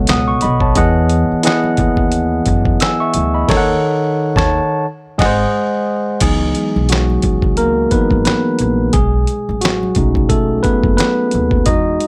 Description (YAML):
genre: R&B, neo-soul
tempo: 88 BPM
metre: 4/4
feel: swing 57% on 16ths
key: C# minor from 6.2 s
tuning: A4 = 438 Hz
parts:
  - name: tine electric piano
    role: accompaniment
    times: 0.0-12.1 s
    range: B2 to E6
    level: -17 LUFS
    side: equal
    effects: plate reverb
  - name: upright bass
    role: bass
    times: 0.0-12.0 s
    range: F#1 to F#2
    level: -21 LUFS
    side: equal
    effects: none
  - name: dusty soul sampler-style drum kit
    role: drums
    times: 0.1-12.1 s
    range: crash cymbal, handclaps, hi-hat, kick drum, snare drum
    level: -20 LUFS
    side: equal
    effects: none
  - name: congas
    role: percussion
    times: 0.1-12.1 s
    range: none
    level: -32 LUFS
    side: equal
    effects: none
room: light reverb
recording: none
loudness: -15 LUFS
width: mono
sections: 0.0-6.2 A section; 6.2-12.1 B section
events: band accent 3.5-6.2; tine electric piano solo 6.2-12.1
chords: 0.0 B7; 0.8 Emaj7; 3.5 D#m7b5; 4.8 G#7; 6.2 C#m11; 8.9 B7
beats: 0.07 | 0.76 1.44 2.12 2.80 | 3.48 4.17 4.85 5.53 | 6.21 6.89 7.58 8.26 | 8.94 9.62 10.30 10.98 | 11.67